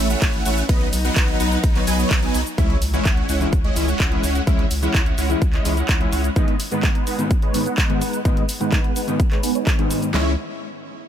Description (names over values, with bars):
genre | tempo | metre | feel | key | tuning
EDM, festival progressive house | 127 BPM | 4/4 | straight | C# minor | A4 = 440 Hz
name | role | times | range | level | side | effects
warm symphonic string section | sustained chords | 0.0-2.6 s | F#3 to E4 | -29 LUFS | left 1 dB | sidechain pumping
supersaw chords | riff | 0.0-10.3 s | F#3 to G#5 | -24 LUFS | right 1 dB | analog chorus, sidechain pumping, low-pass filter, ping-pong delay
saturated sub bass | bass | 0.0-6.3, 10.1-10.4 s | A1 to C#2 | -24 LUFS | equal | sidechain pumping
big-room dance drum kit | drums | 0.1-10.1 s | cabasa, handclaps, hi-hat, ride cymbal | -27 LUFS | right 1 dB | none
big-room dance drum kit | drums | 0.2-10.3 s | handclaps, kick drum, snare drum | -20 LUFS | equal | overdrive
mellow electric guitar | accompaniment | 2.6-10.3 s | G#2 to E4 | -26 LUFS | left 2 dB | wide subtle chorus, sidechain pumping, ping-pong delay
sub drop | sound effects | 2.6-4.5 s | none | -29 LUFS | equal | none
room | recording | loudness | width
little or no reverb | none | -17 LUFS | side -10 dB against mid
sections
0.0-2.6 A section; 2.6-10.1 B section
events
drop 0.0-2.6; impact 2.6-4.5; filter sweep on supersaw synth 2.6-10.1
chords
0.0 A; 0.7 B; 2.6 C#m; 6.4 G#m; 10.1 C#m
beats
0.22 | 0.69 1.17 1.64 2.11 | 2.58 3.06 3.53 4.00 | 4.47 4.95 5.42 5.89 | 6.36 6.83 7.31 7.78 | 8.25 8.72 9.20 9.67 | 10.14